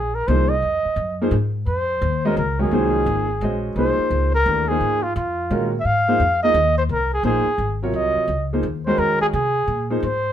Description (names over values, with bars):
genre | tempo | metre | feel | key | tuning
modal jazz | 172 BPM | 3/4 | swing 64% on 8ths | F phrygian | A4 = 439 Hz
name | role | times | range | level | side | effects
trumpet with bucket mute | melody | 0.0-10.3 s | F4 to F5 | -20 LUFS | equal | none
upright bass | bass | 0.0-10.3 s | Ab1 to C3 | -23 LUFS | equal | none
warm grand piano | accompaniment | 0.3-10.0 s | C3 to Eb5 | -22 LUFS | equal | none
room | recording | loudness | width
moderate studio reverb, RT60 0.7 s | minimal, uncompressed stereo recording | -18 LUFS | side -10 dB against mid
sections
0.0-10.3 A section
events
none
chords
0.0 Fm7